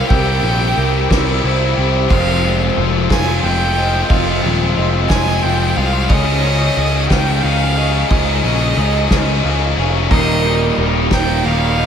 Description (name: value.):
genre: post-rock.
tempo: 60 BPM (dotted quarters).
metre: 6/8.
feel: straight.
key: unclear.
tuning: A4 = 440 Hz.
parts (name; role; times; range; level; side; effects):
rich violin; melody; 0.0-11.9 s; Eb5 to Ab5; -22 LUFS; right 2 dB; analog delay.
twelve-string electric guitar; arpeggios; 0.0-11.9 s; Eb2 to Ab4; -24 LUFS; left 2 dB; ensemble chorus, analog delay.
vibraphone with medium mallets; arpeggios; 0.0-11.9 s; Bb4 to F5; -25 LUFS; right 6 dB; analog delay.
tight distorted guitar; riff; 0.0-11.9 s; Eb2 to Ab4; -20 LUFS; left 11 dB; distortion.
overdriven picked electric bass; bass; 0.1-11.9 s; Eb1 to Db2; -18 LUFS; equal; none.
soft-mallet drum kit; drums; 0.1-11.9 s; crash cymbal, kick drum, ride cymbal, snare drum; -19 LUFS; right 1 dB; none.
crunchy overdriven guitar; riff; 10.1-11.9 s; Eb2 to Eb4; -21 LUFS; right 11 dB; none.
room: light reverb, small room ambience.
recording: none.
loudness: -13 LUFS.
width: side -8 dB against mid.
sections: 0.0-11.9 A section.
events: none.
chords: 0.0 C7; 2.1 Fmadd9; 6.1 Dbsus2; 10.1 Ebadd9.